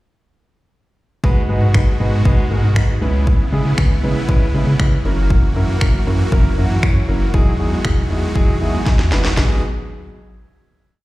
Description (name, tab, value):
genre	dance-pop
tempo	118 BPM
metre	4/4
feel	straight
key	G# minor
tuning	A4 = 440 Hz
part	warm concert grand piano	accompaniment	1.2-9.6 s	F#3 to G#5	-22 LUFS	equal	sidechain pumping, slapback echo
part	supersaw chords	sustained chords	1.2-9.6 s	B2 to F#4	-26 LUFS	right 1 dB	sidechain pumping
part	round analog bass	bass	1.2-9.6 s	E1 to C#3	-18 LUFS	equal	sidechain pumping
part	house drum kit	drums	1.2-9.5 s	finger snaps, kick drum, snare drum	-16 LUFS	equal	none
room	digital ambience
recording	live gig heard through the venue's PA, recital hall reverb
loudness	-14 LUFS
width	side -18 dB against mid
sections	1.2-9.4 verse; 9.4-11.0 final chord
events	grand piano fill 8.4-9.4; drum fill 8.9-9.4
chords	1.2 G#m7; 3.0 C#m7; 5.1 F#7; 7.3 Emaj9; 9.4 G#m7